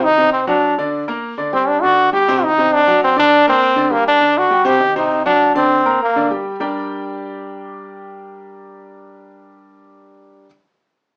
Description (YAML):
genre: latin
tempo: 201 BPM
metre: 4/4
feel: straight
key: G harmonic minor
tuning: A4 = 440 Hz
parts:
  - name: brilliant trombone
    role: melody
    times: 0.0-6.3 s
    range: Bb3 to G4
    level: -12 LUFS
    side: equal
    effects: slapback echo
  - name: clear grand piano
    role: accompaniment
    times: 0.0-10.5 s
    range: C3 to Bb5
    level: -21 LUFS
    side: equal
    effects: none
room: moderate studio reverb, RT60 0.7 s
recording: small speaker sound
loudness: -12 LUFS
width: side -36 dB against mid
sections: 0.0-6.6 A section; 6.6-9.0 B section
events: none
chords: 0.0 Cdim; 0.6 D; 1.2 Gm; 2.4 Cdim; 3.0 D; 3.6 Gm; 4.8 Cdim; 5.4 D7; 6.0 Gm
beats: 0.02 0.32 | 0.62 0.92 1.22 1.52 | 1.82 2.12 2.42 2.71 | 3.01 3.31 3.61 3.91 | 4.21 4.51 4.81 5.11 | 5.41 5.70 6.00 6.30 | 6.60 6.90 7.20 7.50 | 7.79 8.09 8.39 8.69